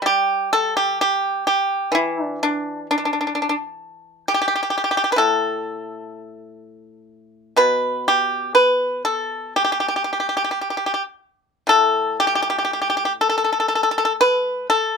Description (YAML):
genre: chinese traditional, Chinese solo plucked strings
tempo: 55-66 BPM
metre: 4/4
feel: rubato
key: unclear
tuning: A4 = 440 Hz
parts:
  - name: pipa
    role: solo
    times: 0.0-15.0 s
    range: A2 to B4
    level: -18 LUFS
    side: equal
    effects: none
room: light reverb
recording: minimal, uncompressed stereo recording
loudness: -18 LUFS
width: side -5 dB against mid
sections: 0.0-11.7 A section; 11.7-15.0 B section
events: none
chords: none